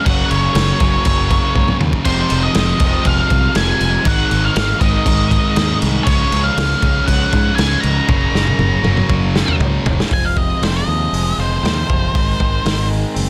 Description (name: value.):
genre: quiet-loud alternative rock.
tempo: 119 BPM.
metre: 4/4.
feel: straight.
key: F phrygian.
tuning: A4 = 440 Hz.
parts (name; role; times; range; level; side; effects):
octave-fuzz lead guitar; melody; 0.0-12.9 s; C5 to Bb5; -23 LUFS; equal; distortion.
crunchy overdriven guitar; riff; 0.0-10.1 s; F2 to Db4; -27 LUFS; equal; none.
distorted electric guitar; riff; 0.0-10.1 s; F2 to Db4; -26 LUFS; equal; overdrive.
thick fuzz guitar; riff; 0.0-13.3 s; F2 to F4; -26 LUFS; equal; distortion.
growling fingered electric bass; bass; 0.1-13.3 s; E1 to Ab2; -22 LUFS; equal; overdrive.
loose indie drum kit; drums; 0.1-13.3 s; crash cymbal, hi-hat, kick drum, snare drum, toms; -20 LUFS; equal; none.
twangy electric guitar; arpeggios; 10.1-13.3 s; F2 to C4; -30 LUFS; equal; tape echo.
room: small room ambience.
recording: dense, heavily limited modern master.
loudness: -16 LUFS.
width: mono.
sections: 0.0-10.1 A section; 10.1-13.3 B section.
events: drum fill 1.6-2.1, 8.1-10.1; lead electric guitar solo 10.1-13.3.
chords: 0.1 Gb; 2.1 Fm; 4.1 Ab; 6.1 Db; 8.1 Gb; 10.1 Fm; 12.1 Ab.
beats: | 0.06 0.56 1.06 1.56 | 2.06 2.56 3.06 3.56 | 4.06 4.56 5.06 5.56 | 6.07 6.57 7.08 7.58 | 8.09 8.59 9.10 9.61 | 10.12 10.62 11.13 11.64 | 12.15 12.65 13.16.